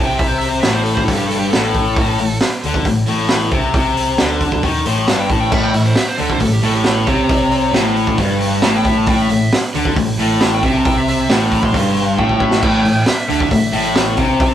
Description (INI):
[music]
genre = hard rock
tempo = 135 BPM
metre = 4/4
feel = straight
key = unclear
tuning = A4 = 441 Hz
[part]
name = smooth overdriven lead guitar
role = melody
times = 0.0-14.5 s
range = G4 to C6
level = -22 LUFS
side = right 2 dB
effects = none
[part]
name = overdriven electric guitar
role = riff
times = 0.0-14.5 s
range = G2 to D#3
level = -17 LUFS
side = left 4 dB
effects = spring reverb
[part]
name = overdriven electric guitar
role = riff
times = 0.0-14.5 s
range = G2 to D#3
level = -26 LUFS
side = right 1 dB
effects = none
[part]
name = picked electric bass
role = bass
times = 0.0-14.5 s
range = G1 to D#2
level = -25 LUFS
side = right 1 dB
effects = none
[part]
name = raw garage drum kit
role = drums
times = 0.2-14.5 s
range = crash cymbal, hi-hat, kick drum, snare drum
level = -18 LUFS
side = right 1 dB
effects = none
[part]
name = crunchy overdriven guitar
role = riff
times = 5.5-14.5 s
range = G2 to D3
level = -19 LUFS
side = right 4 dB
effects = none
[sound]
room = moderate studio reverb, RT60 0.6 s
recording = rough rehearsal-room recording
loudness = -13 LUFS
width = side -10 dB against mid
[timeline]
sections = 0.0-14.5 A section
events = lead electric guitar solo 0.0-14.5; drum fill 12.2-12.6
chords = none